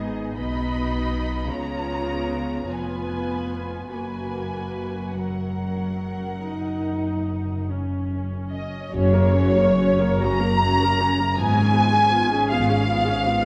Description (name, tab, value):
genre	classical, slow romantic movement for string orchestra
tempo	45-54 BPM (dotted quarters)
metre	12/8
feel	rubato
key	F# major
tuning	A4 = 443 Hz
part	muted symphonic violin section	melody	0.0-13.4 s	C#5 to B5	-28 LUFS	equal	none
part	muted studio violin section	second line	0.0-13.4 s	G#4 to A#5	-31 LUFS	equal	none
part	muted studio viola section	accompaniment	0.0-13.4 s	F#3 to A#4	-30 LUFS	equal	none
part	muted studio cello section	bass	0.0-13.4 s	E#2 to C#3	-30 LUFS	equal	none
part	muted studio double bass section	bass	0.0-13.4 s	E#1 to C#2	-29 LUFS	equal	none
room	moderate scoring stage reverb, RT60 1.9 s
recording	dark, warm production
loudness	-23 LUFS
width	mono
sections	0.0-8.9 A section; 8.9-13.4 B section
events	none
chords	0.0 G#m; 1.5 C#7; 3.9 F#; 11.4 C#7/G#